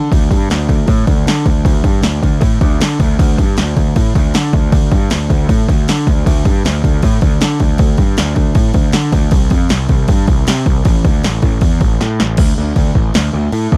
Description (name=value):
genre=heavy metal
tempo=156 BPM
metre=4/4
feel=straight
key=unclear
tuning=A4 = 441 Hz
part: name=fuzz picked electric bass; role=bass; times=0.0-13.8 s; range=A1 to D3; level=-17 LUFS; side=equal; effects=overdrive
part: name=punchy analog drum machine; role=drums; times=0.1-13.8 s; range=crash cymbal, kick drum, snare drum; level=-15 LUFS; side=equal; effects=overdrive
room=little or no reverb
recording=dark, warm production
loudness=-13 LUFS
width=mono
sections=0.1-12.4 A section; 12.4-13.8 B section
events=drum fill 12.0-12.4; half time 12.4-13.8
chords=none